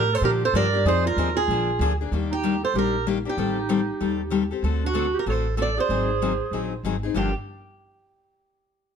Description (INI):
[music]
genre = acoustic string swing (jazz manouche)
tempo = 191 BPM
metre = 4/4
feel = swing 60% on 8ths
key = G minor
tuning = A4 = 439 Hz
[part]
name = picked swing-style acoustic guitar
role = melody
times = 0.0-7.3 s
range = F#4 to D5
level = -26 LUFS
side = right 4 dB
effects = none
[part]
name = breathy clarinet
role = second line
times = 0.0-7.3 s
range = D4 to Bb4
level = -29 LUFS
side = right 6 dB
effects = none
[part]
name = picked steel-string acoustic guitar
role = accompaniment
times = 0.0-7.3 s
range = G2 to A4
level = -26 LUFS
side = left 7 dB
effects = none
[part]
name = upright bass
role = bass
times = 0.0-7.3 s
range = G1 to Bb2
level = -27 LUFS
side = equal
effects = none
[sound]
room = light reverb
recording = dark, warm production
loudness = -21 LUFS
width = side -7 dB against mid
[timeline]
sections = 0.0-2.1 A section; 2.1-7.1 B section; 7.1-8.4 C section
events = none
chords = 0.0 Gm7; 0.9 Fm7; 1.5 Bb7; 2.1 Ebmaj7; 3.4 Am7b5; 4.6 D7; 5.9 Ab7; 7.1 Gm7